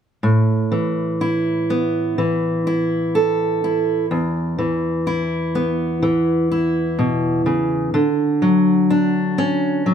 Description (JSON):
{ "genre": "folk, solo fingerstyle acoustic guitar", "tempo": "63 BPM", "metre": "4/4", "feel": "straight", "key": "A major", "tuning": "A4 = 441 Hz", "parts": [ { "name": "fingerpicked steel-string acoustic guitar", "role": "solo", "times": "0.2-9.9 s", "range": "E2 to A4", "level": "-17 LUFS", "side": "equal", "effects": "none" } ], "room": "moderate recital hall reverb, RT60 1.5 s", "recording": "dark, warm production", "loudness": "-17 LUFS", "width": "side -8 dB against mid", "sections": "0.2-9.9 A section", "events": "none", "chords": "0.2 Asus2; 4.1 E5; 7.9 Dmaj7" }